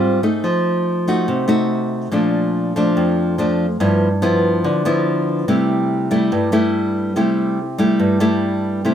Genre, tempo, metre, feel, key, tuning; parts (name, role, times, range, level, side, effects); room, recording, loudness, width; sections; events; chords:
bossa nova; 143 BPM; 4/4; straight; C major; A4 = 440 Hz
nylon-string guitar; solo; 0.0-8.9 s; F2 to Gb4; -15 LUFS; equal
moderate studio ambience, RT60 0.5 s; -15 LUFS; side -9 dB against mid
0.0-8.8 A section
0.4 F7b9; 2.1 Bbmaj7; 3.8 G6; 5.5 C6